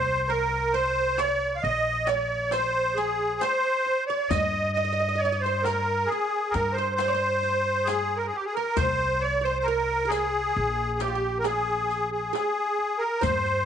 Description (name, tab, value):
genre	Arabic maqam ensemble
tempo	135 BPM (eighths)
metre	10/8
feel	straight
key	C maqam bayati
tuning	A4 = 439 Hz
part	musette accordion	melody	0.0-13.7 s	G4 to F5	-24 LUFS	equal	none
part	oud	second line	0.0-13.7 s	F4 to Eb5	-33 LUFS	right 10 dB	none
part	upright bass	bass	0.0-13.7 s	Bb1 to G2	-32 LUFS	left 1 dB	none
part	darbuka	percussion	0.1-13.6 s	none	-34 LUFS	left 5 dB	none
part	riq	percussion	1.2-13.6 s	none	-40 LUFS	left 15 dB	none
room	moderate echo chamber reverb, RT60 2.1 s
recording	1960s-style stereo with parts hard left and right, nothing above 10.8 kHz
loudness	-23 LUFS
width	side -8 dB against mid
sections	0.0-13.7 A section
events	none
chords	none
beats	0.30 0.74 1.19 1.64 2.08 2.53 2.97 3.42 3.87 | 4.31 4.76 5.20 5.65 6.09 6.54 6.99 7.43 7.88 8.32 | 8.77 9.22 9.66 10.11 10.55 11.00 11.45 11.89 12.34 12.78 | 13.23